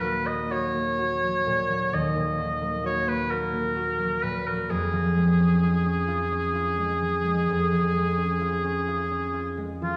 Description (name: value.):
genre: classical, romantic duo for oboe and harp.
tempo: 43 BPM (dotted quarters).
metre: 12/8.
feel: rubato.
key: Eb minor.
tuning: A4 = 435 Hz.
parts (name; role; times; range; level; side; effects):
warm oboe; melody; 0.0-10.0 s; F4 to Eb5; -29 LUFS; equal; none.
concert harp; accompaniment; 0.0-10.0 s; Eb2 to Gb4; -28 LUFS; equal; none.
room: wet recital hall reverb, RT60 1.7 s.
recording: heard from further back in the room, studio reverb.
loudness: -25 LUFS.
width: mono.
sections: 0.0-10.0 A section.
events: none.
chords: 0.0 Ebm; 4.7 Db/F.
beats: 0.50 1.93 3.31 | 4.71 6.09 7.50 8.88.